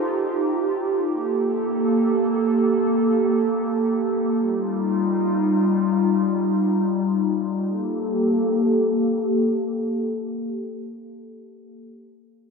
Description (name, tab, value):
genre	hip hop, drill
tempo	free time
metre	none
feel	none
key	G minor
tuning	A4 = 437 Hz
part	Celtic harp	melody	0.0-1.4 s	G4 to C5	-34 LUFS	right 3 dB	low-pass filter, ping-pong delay
part	airy breathy pad	sustained chords	0.0-11.7 s	G3 to A4	-20 LUFS	equal	chorus, low-pass filter
room	moderate scoring stage reverb, RT60 1.7 s, studio reverb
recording	dark, warm production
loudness	-19 LUFS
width	side -4 dB against mid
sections	0.0-7.7 A section; 7.7-11.0 B section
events	filter sweep 0.0-7.7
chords	0.0 Ebadd9; 1.1 Gmadd9; 4.4 Ebadd9; 7.7 Gmadd9